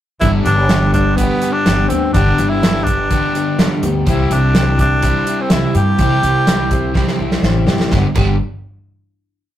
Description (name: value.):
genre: folk rock and heartland rock.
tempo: 125 BPM.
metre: 4/4.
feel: straight.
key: G major.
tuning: A4 = 441 Hz.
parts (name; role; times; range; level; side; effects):
breathy tenor saxophone; melody; 0.2-7.4 s; B3 to G4; -18 LUFS; equal; none.
picked plugged-in steel-string acoustic guitar; accompaniment; 0.2-8.4 s; G2 to G4; -21 LUFS; left 5 dB; none.
crunchy overdriven guitar; riff; 0.2-8.3 s; G2 to G4; -22 LUFS; right 1 dB; none.
upright bass; bass; 0.2-8.4 s; G1 to G2; -17 LUFS; equal; none.
natural country drum kit; drums; 0.2-8.3 s; crash cymbal, hi-hat, kick drum, snare drum; -17 LUFS; right 1 dB; none.
room: moderate studio reverb, RT60 0.5 s.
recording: rough rehearsal-room recording, tube saturation.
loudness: -12 LUFS.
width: side -12 dB against mid.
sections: 0.2-7.9 verse; 7.9-9.6 final chord.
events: drum fill 6.9-7.9.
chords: 0.2 G; 4.1 C; 7.9 G.